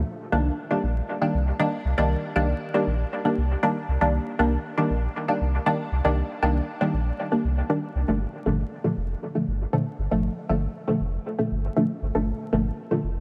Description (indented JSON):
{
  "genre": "dub techno",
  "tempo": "118 BPM",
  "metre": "4/4",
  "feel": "straight",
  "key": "C minor",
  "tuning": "A4 = 441 Hz",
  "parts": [
    { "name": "filtered dub chord stab", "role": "stabs", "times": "0.0-13.0 s", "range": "Bb2 to D4", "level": "-27 LUFS", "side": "equal", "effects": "chorus, phaser, dub echo" },
    { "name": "warm sub bass", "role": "bass", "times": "0.0-13.2 s", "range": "F1 to C2", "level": "-28 LUFS", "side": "equal", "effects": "none" }
  ],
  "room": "moderate huge ambient reverb, RT60 5.5 s",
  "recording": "vinyl crackle",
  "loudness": "-25 LUFS",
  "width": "mono",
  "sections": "0.1-13.2 A section",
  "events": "filter sweep on synth stab 0.1-13.2",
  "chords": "0.1 Cm7; 8.2 Gm7",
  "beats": "| 0.07 0.58 1.09 1.59 | 2.10 2.61 3.12 3.63 | 4.14 4.64 5.15 5.66 | 6.17 6.68 7.19 7.70 | 8.21 8.71 9.22 9.73 | 10.24 10.75 11.26 11.76 | 12.27 12.78"
}